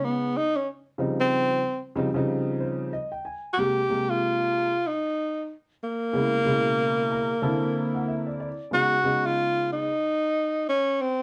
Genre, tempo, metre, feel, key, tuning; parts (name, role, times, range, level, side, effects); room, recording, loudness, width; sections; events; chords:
hip hop; 93 BPM; 4/4; swing 58% on 16ths; Ab major; A4 = 436 Hz
breathy tenor saxophone; melody; 0.0-11.2 s; Bb3 to G4; -26 LUFS; equal
dark grand piano; accompaniment; 0.0-9.9 s; Cb3 to Bb5; -30 LUFS; equal
moderate studio reverb, RT60 0.5 s; dark, warm production; -26 LUFS; mono
0.0-3.6 A section; 3.6-11.2 B section
tenor saxophone solo 0.0-3.6; grand piano fill 2.3-3.6, 6.8-8.7
0.0 B69; 1.0 Eb13; 3.6 Abmaj9; 6.2 Dbm7; 7.4 C13; 8.7 B69